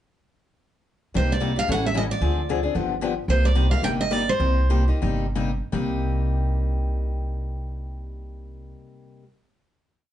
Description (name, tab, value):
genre	acoustic string swing (jazz manouche)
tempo	156-225 BPM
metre	4/4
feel	swing 57% on 8ths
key	C minor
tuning	A4 = 439 Hz
part	picked steel-string acoustic guitar	accompaniment	1.1-9.2 s	C3 to A4	-28 LUFS	left 4 dB	none
part	picked steel-string acoustic guitar	melody	1.2-4.9 s	C5 to G5	-24 LUFS	right 2 dB	plate reverb
part	upright bass	bass	1.2-8.7 s	G1 to D2	-24 LUFS	equal	none
room	moderate club reverb, RT60 0.7 s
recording	heard from further back in the room, nothing above 10.5 kHz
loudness	-21 LUFS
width	side -12 dB against mid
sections	1.1-5.7 A section; 5.7-8.8 final chord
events	slowing down 3.3-5.7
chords	1.1 Cm9; 1.7 A7; 2.2 Dm7b5; 2.8 G7; 3.3 Cm7